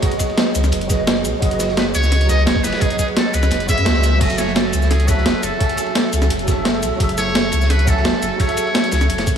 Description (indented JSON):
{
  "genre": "liquid drum and bass",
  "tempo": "172 BPM",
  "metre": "4/4",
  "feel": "straight",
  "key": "F# dorian",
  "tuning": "A4 = 441 Hz",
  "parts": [
    { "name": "tine electric piano", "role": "accompaniment", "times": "0.0-9.4 s", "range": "F#3 to G#5", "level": "-21 LUFS", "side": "right 2 dB", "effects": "ensemble chorus, tape echo" },
    { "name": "breakbeat sampler-style drum kit", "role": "drums", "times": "0.0-9.3 s", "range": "cabasa, crash cymbal, hi-hat, snare drum", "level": "-21 LUFS", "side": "equal", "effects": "none" },
    { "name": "crunchy breakbeat drum kit", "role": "drums", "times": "0.0-9.4 s", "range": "ride cymbal, snare drum", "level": "-28 LUFS", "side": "equal", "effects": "none" },
    { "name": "electronic kick drum", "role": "drums", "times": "0.0-9.3 s", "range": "none", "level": "-20 LUFS", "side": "equal", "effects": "none" },
    { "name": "saturated sub bass", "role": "bass", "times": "0.5-9.3 s", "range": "F#1 to F#2", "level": "-19 LUFS", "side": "equal", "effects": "tube saturation" },
    { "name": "trumpet with metal mute", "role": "melody", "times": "1.8-9.4 s", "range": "G#4 to E5", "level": "-23 LUFS", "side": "equal", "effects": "analog delay" }
  ],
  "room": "moderate huge ambient reverb, RT60 4.4 s",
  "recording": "dreamy mix soaked in reverb, small room ambience",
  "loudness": "-15 LUFS",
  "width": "side -8 dB against mid",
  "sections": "0.0-4.2 A section; 4.2-9.4 A section",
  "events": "drop 0.0-4.2, 4.2-9.4; band accent 3.9",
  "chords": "0.0 Emaj9/F# (rootless); 4.2 F#m9"
}